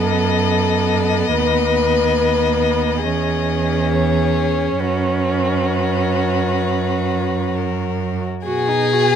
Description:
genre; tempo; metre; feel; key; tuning
classical, slow romantic movement for string quartet; 64-73 BPM; 4/4; rubato; B major; A4 = 437 Hz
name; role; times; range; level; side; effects
warm violin; melody; 0.0-9.2 s; A#4 to G#5; -24 LUFS; left 10 dB; none
warm violin; second line; 0.0-9.2 s; F#4 to B4; -20 LUFS; left 4 dB; none
warm viola; accompaniment; 0.0-9.2 s; B3 to F#4; -23 LUFS; right 3 dB; none
rich cello; bass; 0.0-9.2 s; D#2 to B2; -20 LUFS; right 5 dB; none
room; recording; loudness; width
light reverb; close, detailed microphones; -16 LUFS; side -8 dB against mid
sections
0.0-8.5 A section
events
none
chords
0.0 B7/F#; 1.4 B/D#; 3.0 C#m/E; 4.8 F#sus4; 8.5 B

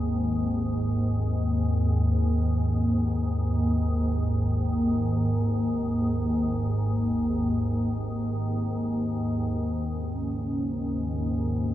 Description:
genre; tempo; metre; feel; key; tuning
ambient; free time; none; none; unclear; A4 = 440 Hz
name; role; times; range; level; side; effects
organ-like drone; drone; 0.0-11.7 s; G#1 to D#2; -24 LUFS; equal; ensemble chorus, built-in reverb
dark analog pad; sustained chords; 9.9-11.7 s; C#4; -32 LUFS; left 1 dB; lush chorus
room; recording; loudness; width
wet cathedral reverb, RT60 5.6 s; in a vast, echoing space, small room ambience; -24 LUFS; side -13 dB against mid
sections
0.0-9.9 A section; 9.9-11.7 B section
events
none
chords
0.0 G#5

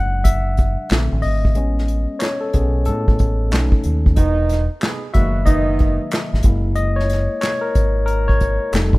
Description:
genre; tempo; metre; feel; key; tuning
R&B, neo-soul; 92 BPM; 4/4; swing 63% on 16ths; unclear; A4 = 440 Hz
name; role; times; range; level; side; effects
barky tine electric piano; accompaniment; 0.0-9.0 s; D3 to F#5; -22 LUFS; left 2 dB; overdrive
deep dub fingered electric bass; bass; 0.0-9.0 s; E1 to A2; -19 LUFS; equal; none
unplugged drum kit; drums; 0.2-9.0 s; handclaps, hi-hat, kick drum, snare drum; -18 LUFS; equal; none
mellow saxophone section; stabs; 4.2-6.1 s; D#3 to G#4; -23 LUFS; right 4 dB; none
room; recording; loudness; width
small room ambience; rough home demo mix; -16 LUFS; side -21 dB against mid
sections
0.0-9.0 A section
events
tine electric piano solo 0.0-9.0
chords
0.0 E9; 0.9 A#maj9; 1.6 Amaj9; 3.5 B9; 4.2 Emaj9#11; 6.4 F#9

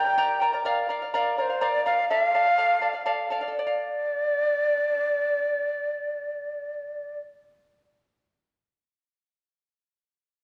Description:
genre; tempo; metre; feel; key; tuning
andean folk; 83 BPM (dotted quarters); 6/8; straight; D minor; A4 = 441 Hz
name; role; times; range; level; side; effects
breathy large quena; melody; 0.0-7.2 s; C5 to G5; -27 LUFS; equal; none
charango; accompaniment; 0.0-8.0 s; G4 to Bb5; -29 LUFS; equal; none
room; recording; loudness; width
wet recital hall reverb, RT60 1.3 s; worn, warbling old tape, cassette tape, warbly pitch drift; -25 LUFS; mono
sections
0.0-3.5 A section; 3.5-6.4 B section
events
none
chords
0.0 Gm; 0.6 Bb; 2.1 Dm

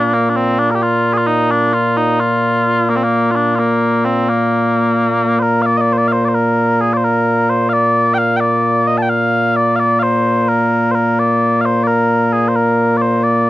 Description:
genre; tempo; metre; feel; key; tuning
scottish traditional; 87 BPM (dotted quarters); 6/8; straight; Bb major; A4 = 439 Hz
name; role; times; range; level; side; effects
mellow small bagpipes; solo; 0.0-13.5 s; Bb2 to A5; -12 LUFS; equal; none
room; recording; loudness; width
light reverb; dry, close 1970s-style studio recording; -12 LUFS; side -16 dB against mid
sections
0.0-5.6 A section; 5.6-13.5 B section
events
none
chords
none

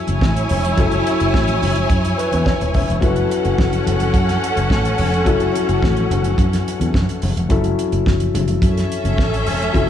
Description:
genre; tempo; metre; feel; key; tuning
disco; 107 BPM; 4/4; straight; F# minor; A4 = 440 Hz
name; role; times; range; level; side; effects
clear symphonic string section; second line; 0.0-9.9 s; C#4 to G#5; -21 LUFS; right 1 dB; none
dark concert grand piano; accompaniment; 0.0-9.9 s; F#3 to E5; -22 LUFS; left 5 dB; none
fingered electric bass; bass; 0.1-9.9 s; D#1 to F#2; -19 LUFS; equal; none
damped 70s drum kit; drums; 0.1-9.9 s; hi-hat, kick drum, snare drum; -21 LUFS; right 1 dB; none
congas; percussion; 0.1-9.9 s; none; -27 LUFS; left 4 dB; none
room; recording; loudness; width
light reverb, studio reverb; small room reverb; -15 LUFS; side -10 dB against mid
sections
0.0-9.9 A section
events
grand piano fill 1.9-3.0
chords
0.0 F#m7

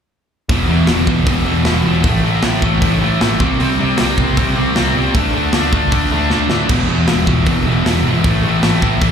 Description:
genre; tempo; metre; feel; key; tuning
punk rock; 155 BPM; 4/4; straight; E minor; A4 = 441 Hz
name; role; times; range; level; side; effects
distorted electric guitar; riff; 0.5-9.1 s; E2 to D4; -15 LUFS; equal; distortion
growling picked electric bass; bass; 0.5-9.1 s; E1 to C3; -18 LUFS; equal; overdrive
tight metal drum kit; drums; 0.5-9.1 s; crash cymbal, hi-hat, kick drum, snare drum; -18 LUFS; equal; none
room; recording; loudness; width
studio reverb; live gig heard through the venue's PA, club reverb; -12 LUFS; side -7 dB against mid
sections
0.5-9.1 A section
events
drum fill 6.3-6.7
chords
0.5 E5; 2.0 A5; 3.4 C5; 5.1 D5; 6.7 E5; 8.2 A5

